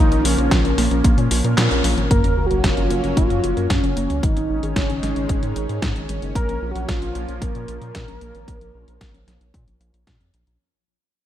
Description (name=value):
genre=italo disco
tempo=113 BPM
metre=4/4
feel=straight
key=Bb minor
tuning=A4 = 443 Hz
part: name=wide unison lead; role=melody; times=0.0-10.1 s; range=Db4 to Bb4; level=-25 LUFS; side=equal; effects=cassette tape, ping-pong delay
part: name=lush unison pad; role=sustained chords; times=0.0-10.6 s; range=Eb3 to Db4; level=-28 LUFS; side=equal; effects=chorus, phaser
part: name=warbly dusty pluck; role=arpeggios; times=0.0-10.6 s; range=Ab3 to Bb5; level=-29 LUFS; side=left 3 dB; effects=chorus, ping-pong delay
part: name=round analog bass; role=bass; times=0.0-10.6 s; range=Gb1 to Bb2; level=-24 LUFS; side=equal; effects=tube saturation
part: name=clean 12-bit digital drum machine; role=drums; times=0.1-10.6 s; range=handclaps, hi-hat, snare drum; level=-25 LUFS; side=equal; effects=gated reverb
part: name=mellow synth brass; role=stabs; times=0.2-2.1 s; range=Bb2 to Bb4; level=-26 LUFS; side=right 3 dB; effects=chorus, ping-pong delay
part: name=electronic kick drum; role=drums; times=0.5-10.2 s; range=none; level=-20 LUFS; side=equal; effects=none
part: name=sub drop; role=sound effects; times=2.2-4.2 s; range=none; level=-28 LUFS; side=equal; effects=none
room=light reverb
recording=none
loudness=-17 LUFS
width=side -11 dB against mid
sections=0.0-2.1 A section; 2.1-10.6 B section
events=kick drops out 1.6-2.1; band accent 1.6; fade-out 2.1-10.6; impact 2.1-4.2; filter sweep on synth arpeggio sound 2.1-10.6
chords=0.0 Bbm; 2.1 Gb; 4.2 Absus4; 6.4 Bbm